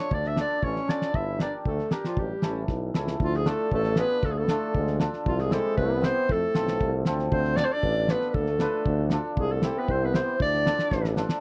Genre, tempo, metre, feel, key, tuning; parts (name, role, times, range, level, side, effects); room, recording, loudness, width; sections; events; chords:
klezmer; 116 BPM; 2/4; straight; D dorian sharp4 from 3.2 s; A4 = 442 Hz
warm clarinet; melody; 0.0-11.1 s; F4 to E5; -30 LUFS; equal; slapback echo
bright trombone; second line; 0.0-11.2 s; F3 to E4; -36 LUFS; equal
warm tuba; bass; 0.1-11.2 s; G1 to F2; -31 LUFS; equal
cloth-damped thuddy drum kit; drums; 0.1-11.4 s; kick drum, snare drum; -30 LUFS; equal
cimbalom; accompaniment; 0.4-11.3 s; C4 to B4; -35 LUFS; equal
light reverb; dry, close 1970s-style studio recording; -26 LUFS; mono
0.0-3.2 A section; 3.2-11.4 B section
drum fill 10.9-11.4
0.0 Dm; 1.1 Gm; 2.2 A7; 3.2 Dm; 5.3 C; 6.3 F; 7.3 Dm; 9.4 C; 10.4 Dm